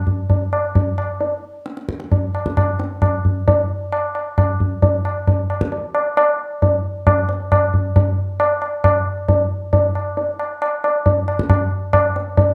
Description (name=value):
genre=indian classical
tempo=134 BPM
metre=5/4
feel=straight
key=none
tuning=none
part: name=tabla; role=percussion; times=0.1-12.5 s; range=none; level=-18 LUFS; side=equal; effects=none
room=moderate small room reverb, RT60 0.5 s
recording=dark, warm production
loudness=-19 LUFS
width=mono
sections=0.0-12.5 A section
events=speeding up 0.0-12.5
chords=none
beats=0.30 0.76 | 1.21 1.67 2.12 2.58 3.03 | 3.48 3.93 4.38 4.83 5.28 | 5.73 6.18 6.62 7.07 7.52 | 7.96 8.41 8.85 9.29 9.74 | 10.18 10.62 11.06 11.50 11.94 | 12.38